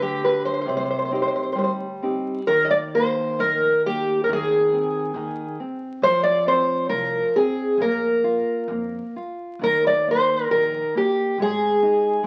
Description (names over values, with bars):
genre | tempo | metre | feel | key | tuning
fado-style ballad | 68 BPM | 2/4 | rubato | Eb major | A4 = 440 Hz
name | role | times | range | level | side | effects
fingerpicked twelve-string acoustic guitar | melody | 0.0-12.3 s | G4 to Eb5 | -22 LUFS | equal | none
nylon-string guitar | accompaniment | 0.0-12.3 s | C3 to B4 | -30 LUFS | equal | none
upright bass | bass | 0.0-12.3 s | Ab1 to F2 | -43 LUFS | equal | none
room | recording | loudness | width
wet studio reverb, RT60 0.9 s | very old 78 rpm record, vinyl crackle | -22 LUFS | mono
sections
0.0-2.5 A section; 2.5-12.3 B section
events
none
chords
0.0 G; 0.7 Cm; 2.5 Eb5; 4.3 Ab/Eb; 6.0 F5; 7.8 Bb5; 9.6 Eb5; 11.4 Ab5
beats
| 0.67 1.57 | 2.48 3.39 | 4.27 5.14 | 6.01 6.89 | 7.78 8.69 | 9.62 10.51 | 11.39 12.26